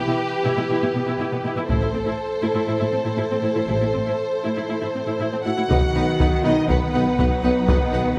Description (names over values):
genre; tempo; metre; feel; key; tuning
cinematic, epic orchestral film score; 121 BPM; 4/4; straight; unclear; A4 = 442 Hz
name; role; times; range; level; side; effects
warm symphonic violin section; melody; 0.0-8.2 s; B4 to F#5; -32 LUFS; equal; none
warm studio violin section; second line; 0.0-8.0 s; G4 to F#5; -30 LUFS; equal; none
mellow French horn section; sustained chords; 0.0-8.2 s; E3 to C5; -28 LUFS; equal; none
warm symphonic viola section; accompaniment; 0.1-8.0 s; B3 to E4; -30 LUFS; equal; none
dark symphonic cello section; bass; 0.1-8.2 s; A2 to F#3; -29 LUFS; equal; none
clear symphonic double bass section; bass; 1.7-8.0 s; A1 to B1; -30 LUFS; equal; none
solo taiko drums; drums; 1.7-2.6, 5.7-8.1 s; none; -26 LUFS; equal; none
dark symphonic string section; sustained chords; 5.7-8.2 s; B3 to F#5; -31 LUFS; equal; none
clear tuba; bass; 5.7-8.0 s; B1; -32 LUFS; equal; none
room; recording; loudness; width
moderate scoring stage reverb, RT60 1.5 s; none; -21 LUFS; mono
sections
0.0-5.7 A section; 5.7-8.2 B section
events
build-up 0.0-5.7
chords
0.0 Em/B; 1.7 Am; 5.7 B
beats
0.21 0.71 1.20 | 1.70 2.19 2.68 3.18 | 3.69 4.19 4.70 5.20 | 5.70 6.20 6.69 7.19 | 7.68 8.17